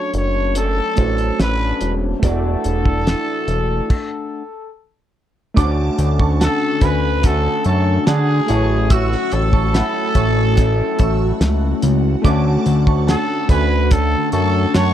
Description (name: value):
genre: indie pop, bedroom pop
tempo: 72 BPM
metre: 4/4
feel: straight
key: unclear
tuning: A4 = 440 Hz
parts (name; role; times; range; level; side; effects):
- growling trumpet; melody; 0.0-14.9 s; F#4 to C#5; -22 LUFS; equal; lush chorus, slapback echo
- electric guitar through a small old amp; accompaniment; 0.0-14.9 s; A2 to A4; -25 LUFS; left 5 dB; analog chorus, warbly pitch drift
- warm analog keys; accompaniment; 0.0-14.9 s; A3 to D5; -26 LUFS; right 2 dB; chorus
- fat analog bass; bass; 0.1-14.9 s; E1 to D3; -18 LUFS; equal; none
- cloth-damped thuddy drum kit; drums; 0.1-14.9 s; crash cymbal, hi-hat, kick drum, snare drum; -16 LUFS; equal; none
- shimmering bell with halo; second line; 5.6-14.9 s; F#5 to E6; -28 LUFS; right 7 dB; ensemble chorus, wide subtle chorus, slapback echo
- ethereal airy pad; sustained chords; 6.5-14.9 s; D3 to F#4; -25 LUFS; left 1 dB; ensemble chorus, built-in reverb, phaser
room: little or no reverb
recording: dry, close 1970s-style studio recording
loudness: -15 LUFS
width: side -10 dB against mid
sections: 0.0-5.6 A section; 5.6-14.9 B section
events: stop 3.9-5.6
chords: 0.0 Dmaj7/F#; 2.2 E9sus4; 5.6 Dmaj7; 8.5 A6; 12.2 Dmaj7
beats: 0.56 1.40 | 2.23 3.07 3.90 4.73 | 5.57 6.40 7.24 8.07 | 8.90 9.74 10.57 11.41 | 12.24 13.07 13.91 14.74